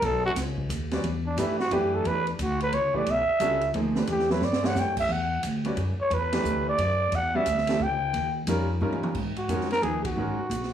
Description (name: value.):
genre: modal jazz.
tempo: 177 BPM.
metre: 3/4.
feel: swing 64% on 8ths.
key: E dorian.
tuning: A4 = 441 Hz.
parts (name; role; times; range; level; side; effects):
growling trumpet; melody; 0.0-10.7 s; D4 to G5; -26 LUFS; equal; none.
upright bass; bass; 0.0-10.7 s; G#1 to G#2; -30 LUFS; equal; none.
open jazz drum kit; drums; 0.0-10.7 s; crash cymbal, hi-hat, kick drum, ride cymbal, snare drum, toms; -34 LUFS; right 2 dB; none.
clear concert grand piano; accompaniment; 0.9-10.4 s; D3 to D5; -29 LUFS; right 1 dB; none.
room: moderate studio reverb, RT60 0.6 s.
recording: small room reverb.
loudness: -24 LUFS.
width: side -9 dB against mid.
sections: 0.0-1.0 A section; 1.0-9.2 A section; 9.2-10.7 B section.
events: trumpet solo 0.0-9.2; drum fill 4.4-4.8, 8.8-9.2; band accent 10.0.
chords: 0.0 B; 1.0 Em9; 8.1 D#7; 9.2 G#7sus2.